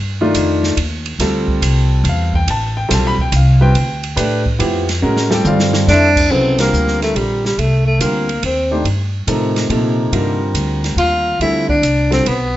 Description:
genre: modal jazz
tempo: 141 BPM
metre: 3/4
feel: swing 67% on 8ths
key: C dorian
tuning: A4 = 440 Hz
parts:
  - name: upright bass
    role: bass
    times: 0.0-12.6 s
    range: A1 to Bb2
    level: -17 LUFS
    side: equal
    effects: none
  - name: warm upright piano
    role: accompaniment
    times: 0.2-12.2 s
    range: C3 to B5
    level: -18 LUFS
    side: equal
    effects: none
  - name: open jazz drum kit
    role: drums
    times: 0.3-12.4 s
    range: crash cymbal, hi-hat, kick drum, ride cymbal, snare drum, toms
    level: -22 LUFS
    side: right 2 dB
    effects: none
  - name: breathy tenor saxophone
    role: melody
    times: 5.9-8.8, 11.0-12.6 s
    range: G3 to F4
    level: -15 LUFS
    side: equal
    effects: none
room: moderate large studio reverb, RT60 0.8 s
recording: nothing above 7.9 kHz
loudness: -13 LUFS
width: side -14 dB against mid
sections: 0.0-6.3 A section; 6.3-12.6 B section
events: drum fill 5.0-5.9; band accent 6.5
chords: 0.0 Cmadd9 (rootless); 1.2 Dm9; 6.3 Cm9; 11.4 Dm9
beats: 0.35 0.78 | 1.20 1.62 2.05 | 2.47 2.90 3.32 | 3.75 4.17 4.59 | 5.02 5.45 5.87 | 6.29 6.72 7.15 | 7.57 8.00 8.42 | 8.85 9.28 9.70 | 10.13 10.55 10.98 | 11.41 11.83 12.26

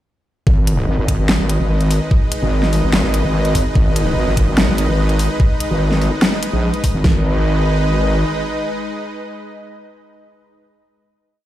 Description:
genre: heavy wobble dubstep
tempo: 146 BPM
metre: 4/4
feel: half-time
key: G# minor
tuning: A4 = 441 Hz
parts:
  - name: supersaw pad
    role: sustained chords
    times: 0.5-10.2 s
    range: G#3 to D#5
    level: -22 LUFS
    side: equal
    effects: sidechain pumping
  - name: wobble bass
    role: bass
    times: 0.5-8.2 s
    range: G#1 to A#1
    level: -16 LUFS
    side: equal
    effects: chorus, overdrive
  - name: dubstep drum kit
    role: drums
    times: 0.5-7.1 s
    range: kick drum, snare drum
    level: -15 LUFS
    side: equal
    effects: overdrive
  - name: dubstep drum kit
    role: drums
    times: 0.7-6.9 s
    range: hi-hat, snare drum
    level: -18 LUFS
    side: left 1 dB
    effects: overdrive
room: little or no reverb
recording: played on a big sound system in a bare room, large studio reverb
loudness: -14 LUFS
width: side -13 dB against mid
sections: 0.5-7.0 drop; 7.0-10.3 final chord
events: drop 0.5-7.0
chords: 0.5 G#m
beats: | 0.47 0.88 1.29 1.70 | 2.11 2.52 2.93 3.34 | 3.75 4.17 4.58 4.99 | 5.40 5.81 6.22 6.63 | 7.04 7.45 7.86 8.28 | 8.69 9.10 9.51 9.92

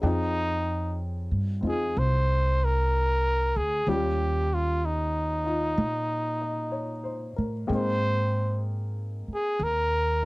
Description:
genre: jazz ballad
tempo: 63 BPM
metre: 4/4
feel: swing 66% on 8ths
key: F minor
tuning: A4 = 440 Hz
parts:
  - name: breathy trumpet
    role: melody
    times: 0.0-10.2 s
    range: D4 to C5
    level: -27 LUFS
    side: equal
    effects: none
  - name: warm baby grand piano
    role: accompaniment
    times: 0.0-10.2 s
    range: G3 to G5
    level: -34 LUFS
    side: left 3 dB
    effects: none
  - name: upright bass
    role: bass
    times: 0.0-10.2 s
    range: C2 to Bb2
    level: -28 LUFS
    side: equal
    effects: none
room: little or no reverb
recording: dry, close 1970s-style studio recording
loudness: -24 LUFS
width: side -22 dB against mid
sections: 0.0-10.2 A section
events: none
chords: 0.0 Fm9; 3.9 Eb9; 7.7 Abmaj9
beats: | 0.02 0.99 1.95 2.91 | 3.87 4.82 5.78 6.74 | 7.69 8.64 9.60

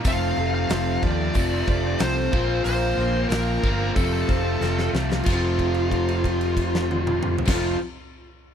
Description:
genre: classic rock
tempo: 92 BPM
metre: 4/4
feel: straight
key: F major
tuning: A4 = 440 Hz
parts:
  - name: picked twelve-string acoustic guitar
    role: accompaniment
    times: 0.0-7.8 s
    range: F2 to F4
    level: -32 LUFS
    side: right 6 dB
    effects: none
  - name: tonewheel organ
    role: sustained chords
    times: 0.0-7.8 s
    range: A3 to C5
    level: -39 LUFS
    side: equal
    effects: none
  - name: distorted electric guitar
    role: riff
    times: 0.0-7.8 s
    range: F2 to C4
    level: -30 LUFS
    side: equal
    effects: overdrive
  - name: huge arena drum kit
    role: drums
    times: 0.0-7.6 s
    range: crash cymbal, hi-hat, kick drum, snare drum, toms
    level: -26 LUFS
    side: equal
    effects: none
  - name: bluesy overdriven lead guitar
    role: melody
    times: 0.1-7.8 s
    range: F4 to F5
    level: -27 LUFS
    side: equal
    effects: distortion
  - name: overdriven electric guitar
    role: riff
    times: 0.1-7.8 s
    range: F2 to Bb3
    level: -27 LUFS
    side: left 3 dB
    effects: spring reverb
  - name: picked electric bass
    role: bass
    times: 0.1-7.7 s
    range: F1 to Eb2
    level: -26 LUFS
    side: equal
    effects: none
room: little or no reverb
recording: dry, close 1970s-style studio recording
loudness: -20 LUFS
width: side -8 dB against mid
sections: 0.0-5.3 A section; 5.3-7.9 B section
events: drum fill 4.6-5.3; held note 5.3-7.5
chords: 0.0 F; 2.3 Bbsus2; 4.0 F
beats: | 0.04 0.70 1.35 2.00 | 2.65 3.31 3.96 4.61 | 5.26 5.91 6.56 7.21

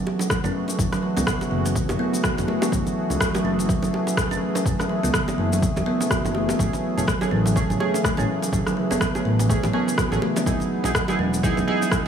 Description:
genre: afro house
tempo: 124 BPM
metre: 4/4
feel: swing 58% on 16ths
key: F# dorian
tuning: A4 = 440 Hz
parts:
  - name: warm analog pad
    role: sustained chords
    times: 0.0-12.1 s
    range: C#3 to G#4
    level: -28 LUFS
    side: left 1 dB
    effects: chorus, sidechain pumping
  - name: smooth synth bass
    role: bass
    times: 0.0-12.1 s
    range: E1 to C#2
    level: -25 LUFS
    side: equal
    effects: tube saturation, sidechain pumping
  - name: bongos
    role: percussion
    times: 0.1-11.9 s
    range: none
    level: -32 LUFS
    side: right 3 dB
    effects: none
  - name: electronic shaker and rim click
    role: drums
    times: 0.2-12.0 s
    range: none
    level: -28 LUFS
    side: equal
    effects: none
  - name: electronic kick drum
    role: drums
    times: 0.3-12.0 s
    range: none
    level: -26 LUFS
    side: equal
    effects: none
  - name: kalimba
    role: arpeggios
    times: 0.4-11.5 s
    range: C#3 to F#4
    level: -25 LUFS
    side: right 2 dB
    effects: sidechain pumping, tape echo
  - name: warm analog keys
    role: stabs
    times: 6.6-12.0 s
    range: A3 to G#4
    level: -27 LUFS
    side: right 3 dB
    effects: chorus, sidechain pumping, tape echo
room: light reverb, digital ambience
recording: studio ambience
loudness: -20 LUFS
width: side -8 dB against mid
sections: 0.0-12.1 A section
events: none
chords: 0.0 F#m9; 10.5 Emaj7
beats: 0.30 | 0.79 1.27 1.75 2.24 | 2.72 3.21 3.69 4.17 | 4.66 5.14 5.63 6.11 | 6.59 7.08 7.56 8.04 | 8.53 9.01 9.50 9.98 | 10.46 10.95 11.43 11.92

